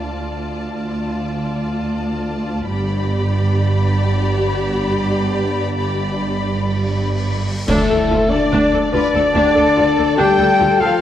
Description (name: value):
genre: cinematic, epic orchestral film score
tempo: 96 BPM (dotted quarters)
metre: 12/8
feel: straight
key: D dorian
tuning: A4 = 440 Hz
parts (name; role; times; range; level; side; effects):
- warm symphonic violin section; melody; 0.0-11.0 s; A4 to B5; -26 LUFS; left 3 dB; none
- rich symphonic violin section; second line; 0.0-11.0 s; G4 to D5; -27 LUFS; left 2 dB; none
- rich symphonic viola section; accompaniment; 0.0-10.9 s; D4 to A4; -25 LUFS; right 1 dB; none
- mellow French horn section; sustained chords; 0.0-11.0 s; A3 to G4; -21 LUFS; left 4 dB; none
- rich studio cello section; bass; 0.0-10.9 s; D2 to G2; -23 LUFS; right 1 dB; none
- rich symphonic double bass section; bass; 0.0-10.9 s; G1 to D2; -23 LUFS; right 2 dB; none
- cymbal swell, clash cymbals and concert bass drum; percussion; 5.2-8.5 s; none; -28 LUFS; equal; none
- cymbal swell and impact; sound effects; 6.7-10.2 s; none; -32 LUFS; equal; none
- concert flute; second line; 7.7-11.0 s; A4 to G5; -22 LUFS; equal; none
- warm trombone section; sustained chords; 7.7-11.0 s; A2 to G3; -24 LUFS; right 2 dB; none
- mellow trumpet; stabs; 7.7-11.0 s; A4 to G5; -21 LUFS; left 1 dB; none
room: wet scoring stage reverb, RT60 1.8 s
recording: worn, warbling old tape, cassette tape, warbly pitch drift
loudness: -15 LUFS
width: side -11 dB against mid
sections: 0.0-7.7 A section; 7.7-11.0 B section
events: cymbal swell 6.7-7.7; band accent 7.7-8.1; impact 7.7-10.2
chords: 0.0 Dm; 2.7 G; 7.7 Dm